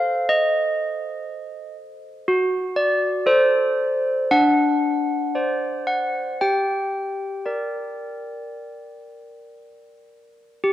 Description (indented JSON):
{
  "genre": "classical, tune for handbells",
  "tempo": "56-61 BPM",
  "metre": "4/4",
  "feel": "straight",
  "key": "G minor",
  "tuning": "A4 = 439 Hz",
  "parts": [
    { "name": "handbells", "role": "solo", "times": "0.0-10.7 s", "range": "D4 to G5", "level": "-20 LUFS", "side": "equal", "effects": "none" }
  ],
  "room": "moderate concert hall reverb, RT60 2.3 s",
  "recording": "dark, warm production",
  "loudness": "-19 LUFS",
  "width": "side -13 dB against mid",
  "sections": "0.0-10.6 A section",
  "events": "none",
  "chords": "0.0 Adim; 2.3 D7/F#; 4.3 D7; 6.4 Gm"
}